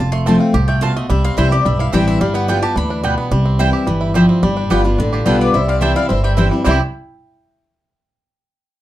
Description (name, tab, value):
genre	bluegrass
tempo	216 BPM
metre	4/4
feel	straight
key	C major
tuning	A4 = 441 Hz
part	bluegrass banjo	melody	0.0-6.8 s	G3 to G4	-23 LUFS	right 4 dB	none
part	mandolin	melody	0.0-6.8 s	F4 to C6	-23 LUFS	left 3 dB	none
part	picked steel-string acoustic guitar	accompaniment	0.0-6.8 s	F2 to F4	-17 LUFS	left 1 dB	none
part	upright bass	bass	0.0-6.8 s	F1 to D2	-18 LUFS	equal	none
part	mandolin	stabs	0.3-6.8 s	B3 to A5	-22 LUFS	right 4 dB	none
part	rich fiddle	second line	5.1-6.8 s	D4 to E5	-24 LUFS	left 3 dB	none
room	moderate studio ambience, RT60 0.5 s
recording	dark, warm production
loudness	-13 LUFS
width	side -14 dB against mid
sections	0.0-4.4 A section; 4.4-6.7 B section; 6.7-7.8 C section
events	none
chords	0.0 F; 1.1 C; 2.2 G7; 3.3 C; 4.4 G7; 5.5 C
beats	0.26 0.54 0.82 | 1.10 1.38 1.65 1.93 | 2.21 2.49 2.77 3.04 | 3.32 3.60 3.88 4.16 | 4.43 4.71 4.99 5.27 | 5.54 5.82 6.10 6.38 | 6.66